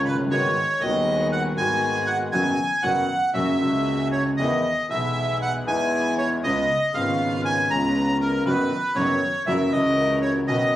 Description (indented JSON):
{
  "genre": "tango",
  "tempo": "118 BPM",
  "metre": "4/4",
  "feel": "rubato",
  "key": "B major",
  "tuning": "A4 = 439 Hz",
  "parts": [
    { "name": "warm concert grand piano", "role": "accompaniment", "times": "0.0-10.7 s", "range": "D#1 to F#4", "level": "-24 LUFS", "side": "left 1 dB", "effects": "none" },
    { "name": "dark symphonic string section", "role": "stabs", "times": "0.0-10.7 s", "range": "A#3 to B4", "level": "-34 LUFS", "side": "equal", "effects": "none" },
    { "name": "clear double bass", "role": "bass", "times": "0.0-10.7 s", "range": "F#1 to E2", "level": "-29 LUFS", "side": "right 2 dB", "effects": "none" },
    { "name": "bandoneon", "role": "melody", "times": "0.1-10.8 s", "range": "A#4 to A#5", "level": "-23 LUFS", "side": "equal", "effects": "none" }
  ],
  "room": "moderate large studio reverb, RT60 0.8 s",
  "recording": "recorded on a phone in the room, club reverb",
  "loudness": "-20 LUFS",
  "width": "side -13 dB against mid",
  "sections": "0.0-10.8 A section",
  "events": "none",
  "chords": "0.3 G#m7; 2.3 B/F#; 3.3 F#add9; 4.4 Emaj7; 6.4 C#7; 8.5 B/F#; 9.5 F#7"
}